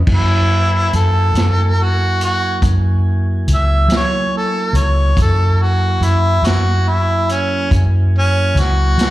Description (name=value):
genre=slow blues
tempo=47 BPM (dotted quarters)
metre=12/8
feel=straight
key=F# mixolydian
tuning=A4 = 441 Hz
part: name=mellow tonewheel organ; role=sustained chords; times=0.0-9.1 s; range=F#3 to G#5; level=-25 LUFS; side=right 3 dB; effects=slow rotary speaker
part: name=vintage muted fingered electric bass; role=bass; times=0.0-9.1 s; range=C#2 to F#3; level=-14 LUFS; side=equal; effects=none
part: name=warm harmonica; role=melody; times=0.1-9.1 s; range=C#4 to E5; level=-18 LUFS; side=equal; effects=overdrive, slapback echo
part: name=vintage drum kit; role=drums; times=0.1-9.1 s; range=crash cymbal, hi-hat, kick drum, snare drum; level=-21 LUFS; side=equal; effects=none
room=small room ambience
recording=live gig heard through the venue's PA, club reverb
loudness=-12 LUFS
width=side -16 dB against mid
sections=0.1-9.1 A section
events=none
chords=0.1 F#9